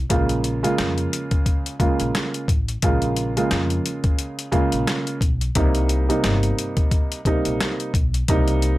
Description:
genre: hip hop, boom-bap hip-hop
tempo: 88 BPM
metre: 4/4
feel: swing 56% on 16ths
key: Bb dorian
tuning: A4 = 441 Hz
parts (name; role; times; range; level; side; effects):
- upright bass; bass; 0.0-8.8 s; G1 to F2; -23 LUFS; equal; none
- dark upright piano; accompaniment; 0.1-8.8 s; C3 to F4; -22 LUFS; right 2 dB; cassette tape, high-pass filter, low-pass filter
- boom bap sampler-style drum kit; drums; 0.1-8.8 s; hi-hat, kick drum, rim click, snare drum; -22 LUFS; left 1 dB; none
room: little or no reverb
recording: none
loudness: -19 LUFS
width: side -17 dB against mid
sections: 0.0-8.8 A section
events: none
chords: 0.1 Bbm7; 5.6 Cm7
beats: | 0.10 0.78 1.47 2.15 | 2.83 3.51 4.19 4.88 | 5.56 6.24 6.92 7.60 | 8.28

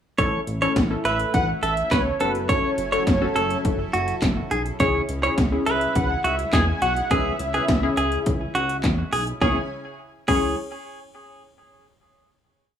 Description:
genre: synth-pop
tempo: 104 BPM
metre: 4/4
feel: straight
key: C# minor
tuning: A4 = 438 Hz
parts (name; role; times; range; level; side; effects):
- direct-recorded clean electric guitar; second line; 0.2-10.6 s; F#4 to C#5; -25 LUFS; right 2 dB; analog delay, plate reverb
- funky polysynth comp; accompaniment; 0.2-10.6 s; C#4 to B4; -26 LUFS; left 3 dB; chorus, plate reverb
- lush unison pad; sustained chords; 0.2-9.7 s; C#3 to G#5; -34 LUFS; equal; chorus, plate reverb
- chorused synth bass; bass; 0.2-10.5 s; F#1 to E2; -27 LUFS; equal; none
- 80s electronic pad drums; drums; 0.2-10.4 s; crash cymbal, handclaps, hi-hat, kick drum, snare drum; -24 LUFS; equal; overdrive
- wide unison lead; melody; 1.1-10.5 s; B4 to G#5; -27 LUFS; equal; plate reverb
room: moderate small room reverb, RT60 0.5 s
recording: rough home demo mix, small room ambience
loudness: -20 LUFS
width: side -9 dB against mid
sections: 0.2-9.4 chorus; 9.4-11.7 final chord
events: none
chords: 0.2 A; 2.2 F#m7; 4.8 C#m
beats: | 0.18 0.76 1.34 1.92 | 2.49 3.07 3.65 4.22 | 4.80 5.38 5.95 6.53 | 7.11 7.68 8.26 8.84 | 9.42 9.99

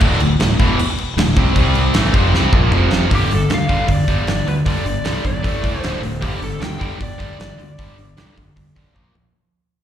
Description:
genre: hard rock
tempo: 154 BPM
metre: 4/4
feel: straight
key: unclear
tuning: A4 = 440 Hz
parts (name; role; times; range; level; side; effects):
- overdriven electric guitar; riff; 0.0-9.3 s; D2 to C4; -19 LUFS; equal; slapback echo
- fuzz fingered electric bass; bass; 0.0-9.3 s; D1 to D2; -20 LUFS; equal; overdrive
- gated 80s drum kit; drums; 0.0-9.2 s; crash cymbal, hi-hat, kick drum, snare drum, toms; -19 LUFS; equal; none
- lead guitar through a small cranked amp; melody; 3.1-8.9 s; G4 to G5; -26 LUFS; left 1 dB; overdrive, slapback echo, analog delay
room: small room ambience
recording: live gig heard through the venue's PA, recital hall reverb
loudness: -14 LUFS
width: side -10 dB against mid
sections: 0.0-3.1 A section; 3.1-9.3 B section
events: drum fill 2.3-3.1, 9.0-9.3; fade-out 3.1-9.3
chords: 0.0 D5; 1.6 C5; 1.9 Fadd11; 2.7 F5; 3.1 G5; 5.4 A5; 5.8 D5; 6.2 G5; 9.0 Bb5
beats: | 0.01 0.40 0.78 1.17 | 1.55 1.94 2.33 2.71 | 3.10 3.49 3.88 4.26 | 4.65 5.04 5.43 5.82 | 6.21 6.60 6.99 7.38 | 7.78 8.17 8.56 8.95

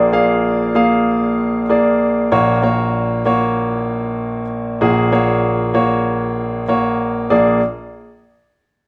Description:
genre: pop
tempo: 96 BPM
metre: 4/4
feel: straight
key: unclear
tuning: A4 = 440 Hz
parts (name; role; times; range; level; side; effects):
- warm concert grand piano; solo; 0.0-7.6 s; Bb1 to F5; -16 LUFS; equal; none
room: moderate stone room reverb, RT60 1.2 s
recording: band playing live in one room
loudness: -17 LUFS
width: mono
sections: 0.0-7.3 A section; 7.3-8.9 B section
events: none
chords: 0.0 Bb7; 2.3 Gb/Bb; 7.3 Bb7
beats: 0.44 1.07 1.69 | 2.32 2.94 3.57 4.19 | 4.82 5.44 6.07 6.69 | 7.32

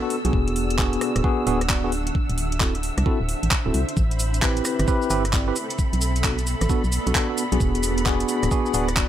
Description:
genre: UK garage, two-step garage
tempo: 132 BPM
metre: 4/4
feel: swing 64% on 16ths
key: unclear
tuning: A4 = 440 Hz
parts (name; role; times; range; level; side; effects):
- soft string machine; sustained chords; 0.0-9.1 s; B5 to E6; -34 LUFS; equal; ensemble chorus, sidechain pumping
- tine electric piano; stabs; 0.0-9.1 s; B3 to D5; -25 LUFS; equal; medium stereo tremolo, digital delay
- granular cloud pad; texture; 0.1-9.1 s; B3 to F#5; -32 LUFS; right 1 dB; built-in reverb, sidechain pumping
- garage drum kit; drums; 0.1-9.1 s; handclaps, hi-hat, rim click, shaker; -27 LUFS; right 1 dB; none
- organ-like FM bass; bass; 0.2-9.1 s; D1 to C2; -24 LUFS; equal; none
- electronic kick drum; drums; 0.3-9.1 s; none; -24 LUFS; equal; none
room: little or no reverb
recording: none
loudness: -20 LUFS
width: side -11 dB against mid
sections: 0.0-9.1 A section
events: none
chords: 0.3 E9; 2.1 D9; 4.0 Am7; 5.6 Bm7; 7.6 E9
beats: | 0.33 0.79 1.24 1.70 | 2.15 2.60 3.06 3.51 | 3.97 4.42 4.88 5.33 | 5.79 6.24 6.70 7.15 | 7.60 8.06 8.51 8.97

